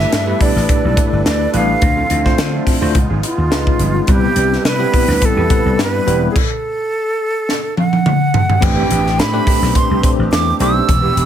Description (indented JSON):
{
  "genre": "polished 1980s jazz-funk pop",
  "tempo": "106 BPM",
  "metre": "4/4",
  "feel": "swing 54% on 16ths",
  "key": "unclear",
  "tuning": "A4 = 440 Hz",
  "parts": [
    { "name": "breathy mellow silver concert flute", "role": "melody", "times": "0.0-11.3 s", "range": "E#4 to E6", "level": "-19 LUFS", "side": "right 2 dB", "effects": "none" },
    { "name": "bell-like tine electric piano", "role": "accompaniment", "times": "0.0-10.9 s", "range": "G3 to C5", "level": "-20 LUFS", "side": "left 2 dB", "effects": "medium stereo tremolo, wide subtle chorus" },
    { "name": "musette accordion", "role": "sustained chords", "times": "0.0-11.3 s", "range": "C3 to D5", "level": "-28 LUFS", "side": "equal", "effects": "none" },
    { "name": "mellow electric guitar", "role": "riff", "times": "0.0-11.3 s", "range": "F3 to B4", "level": "-25 LUFS", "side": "right 8 dB", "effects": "analog chorus" },
    { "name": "vintage slap bass", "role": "bass", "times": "0.0-11.3 s", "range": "E1 to D3", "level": "-18 LUFS", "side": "equal", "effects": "none" },
    { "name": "crisp fusion drum kit", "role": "drums", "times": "0.1-11.3 s", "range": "crash cymbal, hi-hat, kick drum, snare drum, toms", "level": "-16 LUFS", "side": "equal", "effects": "none" }
  ],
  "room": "little or no reverb",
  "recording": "none",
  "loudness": "-12 LUFS",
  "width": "side -10 dB against mid",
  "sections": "0.0-8.6 A section; 8.6-11.3 A section",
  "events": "stop 6.4-8.6; drum fill 7.5-8.6",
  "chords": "0.0 G69; 1.8 Dm9; 3.0 C#9; 4.1 Cmaj7; 6.4 N.C.; 8.6 Am11"
}